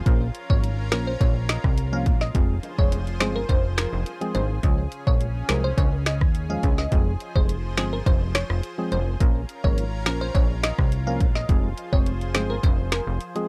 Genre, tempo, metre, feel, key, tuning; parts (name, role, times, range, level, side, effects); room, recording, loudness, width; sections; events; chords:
dancehall; 105 BPM; 4/4; straight; F minor; A4 = 442 Hz
lush unison pad; sustained chords; 0.0-13.5 s; Db3 to C5; -39 LUFS; equal; chorus, sidechain pumping
plucky analog bass; bass; 0.0-13.2 s; F1 to Eb2; -28 LUFS; equal
percussive organ stab; accompaniment; 0.1-13.5 s; F3 to Bb4; -31 LUFS; equal; chorus, sidechain pumping
afro-pop drum kit; drums; 0.1-13.5 s; finger snaps, hi-hat, kick drum, rim click, snare drum; -24 LUFS; equal
glassy wavetable pluck; melody; 0.5-13.0 s; Ab4 to F5; -34 LUFS; equal; chorus, analog delay
bongos; percussion; 1.2-12.8 s; -41 LUFS; equal
little or no reverb; dark, warm production; -23 LUFS; mono
0.0-13.5 A section
0.1 Bbm; 2.3 Fm; 4.6 Db; 6.9 Fm; 9.2 Bbm; 11.5 Fm